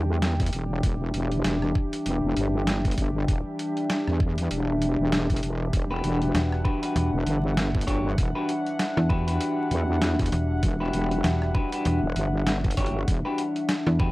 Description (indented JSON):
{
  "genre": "glitch hop",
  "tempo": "98 BPM",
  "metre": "4/4",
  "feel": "swing 58% on 16ths",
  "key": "E minor",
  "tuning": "A4 = 442 Hz",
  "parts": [
    { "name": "warbly tape-like pad", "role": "sustained chords", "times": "0.0-14.1 s", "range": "E3 to F#5", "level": "-34 LUFS", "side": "equal", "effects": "chorus, built-in reverb, sidechain pumping" },
    { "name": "wobble bass", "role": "bass", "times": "0.0-13.2 s", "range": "E1 to E2", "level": "-26 LUFS", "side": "equal", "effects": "chorus, tube saturation" },
    { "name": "warbly tape-like pad", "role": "texture", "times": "0.0-14.1 s", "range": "G3 to E5", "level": "-30 LUFS", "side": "left 1 dB", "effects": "chorus, built-in reverb, sidechain pumping" },
    { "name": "boom bap sampler-style drum kit", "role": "drums", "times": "0.2-14.0 s", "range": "hi-hat, rim click, snare drum", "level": "-30 LUFS", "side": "equal", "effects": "none" },
    { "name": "electronic kick drum", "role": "drums", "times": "0.4-14.1 s", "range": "none", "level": "-25 LUFS", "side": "equal", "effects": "none" },
    { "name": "electric guitar at the edge of break-up", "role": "stabs", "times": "5.9-14.1 s", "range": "D4 to C#5", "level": "-30 LUFS", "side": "left 1 dB", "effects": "vintage 12-bit sampler grit, sidechain pumping, analog delay" },
    { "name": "slap-like FM bass", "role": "bass", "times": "6.3-14.1 s", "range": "E1 to E2", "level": "-23 LUFS", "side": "equal", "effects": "tube saturation" }
  ],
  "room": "light reverb",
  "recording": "dry, gritty hardware recording, vinyl crackle",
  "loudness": "-23 LUFS",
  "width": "side -19 dB against mid",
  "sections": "0.0-14.1 A section",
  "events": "none",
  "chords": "0.0 Em7",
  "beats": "0.22 | 0.83 1.45 2.06 2.67 | 3.28 3.90 4.51 5.12 | 5.73 6.34 6.96 7.57 | 8.18 8.79 9.41 10.02 | 10.63 11.24 11.86 12.47 | 13.08 13.69"
}